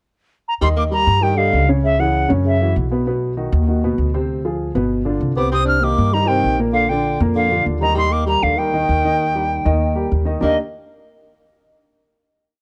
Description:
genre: jazz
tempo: 196 BPM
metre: 4/4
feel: straight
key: Eb major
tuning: A4 = 440 Hz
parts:
  - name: bright reedy silver concert flute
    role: melody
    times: 0.5-2.7, 5.4-10.6 s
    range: Eb5 to F6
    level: -21 LUFS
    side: equal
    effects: none
  - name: clear tenor saxophone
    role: second line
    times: 0.6-2.7, 5.4-10.6 s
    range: Db3 to D4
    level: -27 LUFS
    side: equal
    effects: none
  - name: warm baby grand piano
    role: accompaniment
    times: 0.6-10.6 s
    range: Bb2 to Eb5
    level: -24 LUFS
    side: equal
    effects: none
  - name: upright bass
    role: bass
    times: 0.6-10.6 s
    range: G1 to G2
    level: -22 LUFS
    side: equal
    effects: none
room: studio reverb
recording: dry, close 1970s-style studio recording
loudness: -18 LUFS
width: mono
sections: 0.0-0.6 pickup bar; 0.6-10.4 A section; 10.4-11.6 final chord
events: none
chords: 0.0 N.C.; 0.6 Ebmaj7; 1.8 Dbm; 2.5 Gb5; 3.1 B; 4.3 Dm7b5; 4.9 G7; 5.5 Cm9; 6.7 Bb; 8.0 Eb; 10.4 Ebmaj7

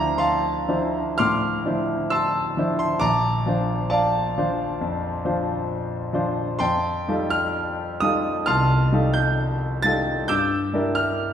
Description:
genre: classical, impressionist solo piano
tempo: 66 BPM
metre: 4/4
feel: rubato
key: unclear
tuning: A4 = 439 Hz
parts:
  - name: clear concert grand piano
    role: solo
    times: 0.0-11.3 s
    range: Bb1 to A6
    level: -20 LUFS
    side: equal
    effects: none
room: wet recital hall reverb, RT60 1.4 s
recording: heard from further back in the room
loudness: -20 LUFS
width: side -9 dB against mid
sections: 0.0-11.3 A section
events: none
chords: 0.0 Dm9; 3.0 Bbmaj9; 6.6 F9; 10.3 Gm6

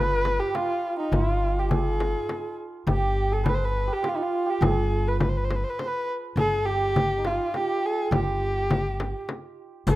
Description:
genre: Persian modal ensemble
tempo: 103 BPM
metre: 3/4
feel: straight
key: G dastgah homayun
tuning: A4 = 441 Hz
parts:
  - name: dark kamancheh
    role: melody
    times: 0.0-10.0 s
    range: Eb4 to C5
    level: -27 LUFS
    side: equal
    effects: plate reverb
  - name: santur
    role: second line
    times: 0.0-10.0 s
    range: D4 to B4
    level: -31 LUFS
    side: right 5 dB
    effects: plate reverb
  - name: upright bass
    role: bass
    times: 0.0-10.0 s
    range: G1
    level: -27 LUFS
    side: equal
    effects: none
  - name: frame drum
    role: percussion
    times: 0.3-10.0 s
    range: none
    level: -26 LUFS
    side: left 2 dB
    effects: none
  - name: riq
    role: percussion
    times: 9.9-10.0 s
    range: none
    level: -30 LUFS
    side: left 3 dB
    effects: none
room: light reverb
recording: rough home demo mix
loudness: -23 LUFS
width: side -16 dB against mid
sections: 0.0-9.9 A section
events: none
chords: none

